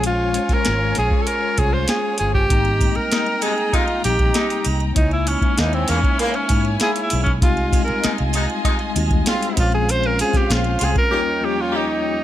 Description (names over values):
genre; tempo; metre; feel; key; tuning
lush 1970s-style soul; 98 BPM; 4/4; straight; Ab major; A4 = 444 Hz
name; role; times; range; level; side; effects
breathy tenor saxophone; melody; 0.0-12.2 s; Bb3 to C5; -21 LUFS; equal; none
warm studio violin section; second line; 0.0-12.2 s; Db4 to Bb5; -28 LUFS; equal; none
mellow tine electric piano; accompaniment; 0.0-12.2 s; Eb2 to C5; -26 LUFS; left 4 dB; medium stereo tremolo
vintage muted fingered electric bass; bass; 0.0-10.9 s; G1 to Ab2; -22 LUFS; equal; none
soft vintage rhythm box; drums; 0.0-11.1 s; hi-hat, kick drum, snare drum; -21 LUFS; equal; overdrive
triangle; percussion; 2.5-11.1 s; none; -35 LUFS; right 11 dB; none
warm horn section; stabs; 3.1-12.2 s; Fb2 to G4; -27 LUFS; equal; none
room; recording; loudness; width
light reverb, small room reverb; none; -16 LUFS; side -12 dB against mid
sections
0.0-12.2 A section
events
tenor saxophone solo 0.0-12.2; break 11.1-12.2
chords
0.0 Bbm9; 2.5 Abmaj7; 5.0 Dbm6; 7.4 Fm7/C; 9.6 Bbm9; 11.1 Eb7